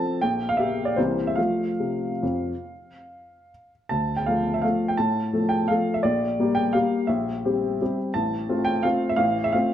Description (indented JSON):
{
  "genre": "classical, piano waltz",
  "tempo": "135-184 BPM",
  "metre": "3/4",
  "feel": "rubato",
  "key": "F major",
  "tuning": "A4 = 443 Hz",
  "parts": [
    { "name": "clear upright piano", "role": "solo", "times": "0.0-9.7 s", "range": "A1 to A5", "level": "-22 LUFS", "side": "equal", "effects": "none" }
  ],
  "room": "moderate large studio reverb, RT60 1.5 s",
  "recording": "dark, warm production",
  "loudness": "-21 LUFS",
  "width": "side -10 dB against mid",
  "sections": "0.0-3.9 A section; 3.9-9.7 B section",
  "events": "none",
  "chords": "0.2 Gm/Bb; 1.0 C7; 1.4 F; 3.9 Dm; 6.0 Gm/Bb; 7.1 C7/Bb; 8.1 F/A"
}